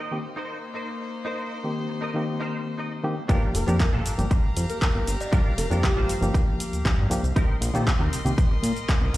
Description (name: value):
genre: nu-disco, nu disco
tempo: 118 BPM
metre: 4/4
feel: straight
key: G minor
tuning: A4 = 435 Hz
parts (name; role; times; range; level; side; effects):
- rich chamber string section; sustained chords; 0.0-9.2 s; Bb3 to C6; -36 LUFS; left 2 dB; sidechain pumping
- direct-recorded clean electric guitar; riff; 0.0-9.2 s; C4 to Eb5; -34 LUFS; right 1 dB; ensemble chorus, dub echo
- barky reed electric piano; accompaniment; 0.1-8.3 s; Eb3 to G4; -30 LUFS; left 1 dB; overdrive, fast tremolo, sidechain pumping, dub echo
- fat analog bass; bass; 3.3-9.2 s; F1 to Bb2; -25 LUFS; equal; none
- electronic kick drum; drums; 3.3-9.0 s; none; -22 LUFS; equal; overdrive
- house drum kit; drums; 3.3-9.2 s; handclaps, hi-hat, shaker; -31 LUFS; equal; overdrive
- soft octave-layered synth lead; melody; 3.6-6.4 s; G4 to Bb4; -33 LUFS; equal; chorus, dub echo
- cowbell; percussion; 5.2-5.3 s; none; -36 LUFS; equal; none
room: light reverb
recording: played on a big sound system in a bare room, large studio reverb, lossy compression artefacts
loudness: -22 LUFS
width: side -16 dB against mid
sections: 0.0-3.3 A section; 3.3-9.2 B section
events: drop 3.3-9.2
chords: 0.0 Cm7; 3.3 Gm7; 7.4 Cm7